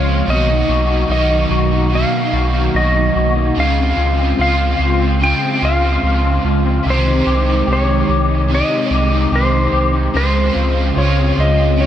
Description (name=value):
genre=dream pop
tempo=73 BPM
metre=4/4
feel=straight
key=unclear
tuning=A4 = 441 Hz
part: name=clean lap steel guitar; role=melody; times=0.0-11.9 s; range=C5 to G5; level=-19 LUFS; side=equal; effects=analog delay
part: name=crunchy overdriven guitar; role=accompaniment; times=0.0-11.9 s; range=Cb3 to G4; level=-22 LUFS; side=right 4 dB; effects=harmonic tremolo, ensemble chorus, analog delay
part: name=hollow soft pad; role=sustained chords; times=0.0-11.9 s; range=Cb3 to Ab4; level=-21 LUFS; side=right 2 dB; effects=ensemble chorus
part: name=electric guitar through a small old amp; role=arpeggios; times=0.0-11.9 s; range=Cb3 to G4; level=-20 LUFS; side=left 4 dB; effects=ensemble chorus, analog delay
part: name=sub bass with octave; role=bass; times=0.0-11.9 s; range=Cb2 to Db2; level=-17 LUFS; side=equal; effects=none
room=moderate spring reverb, RT60 2.8 s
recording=echo-heavy mix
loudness=-13 LUFS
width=side -10 dB against mid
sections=0.0-11.9 A section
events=none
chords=0.3 Cbmaj7; 3.6 Dbmaj7; 6.9 Abmaj7/C; 10.1 Dbmaj7